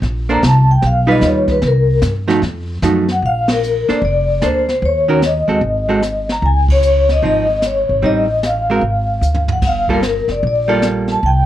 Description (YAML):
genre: jazz, small-group swing and bop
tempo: 150 BPM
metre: 4/4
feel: swing 65% on 8ths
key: unclear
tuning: A4 = 439 Hz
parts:
  - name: upright bass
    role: bass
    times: 0.0-11.5 s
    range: F1 to G2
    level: -17 LUFS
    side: equal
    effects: none
  - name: jazz brush drum kit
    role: drums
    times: 0.0-11.5 s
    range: brushed snare drum, crash cymbal, hi-hat, kick drum, ride cymbal, snare drum, toms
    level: -22 LUFS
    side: equal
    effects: none
  - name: vibraphone with medium mallets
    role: melody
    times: 0.3-11.5 s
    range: Bb4 to Bb5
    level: -16 LUFS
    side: left 2 dB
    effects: none
  - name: archtop guitar, miked and amplified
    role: accompaniment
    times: 0.3-11.2 s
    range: Eb3 to C5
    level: -16 LUFS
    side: right 3 dB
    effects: none
room: light reverb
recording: worn, warbling old tape, cassette tape, warbly pitch drift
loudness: -12 LUFS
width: side -12 dB against mid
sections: 0.0-3.2 A section; 3.2-11.5 B section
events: vibraphone solo 0.0-3.2; band accent 3.4, 6.6; drum fill 9.2-9.6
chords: 0.0 Bbmaj9; 0.8 Gaug7; 1.6 Cm7; 2.4 F7b9; 3.2 Bbmaj9; 4.8 Ebm7; 5.6 Ab7b9; 6.4 Dbmaj9; 8.0 Am7b5; 8.8 Ddim/Ab; 9.6 Gm9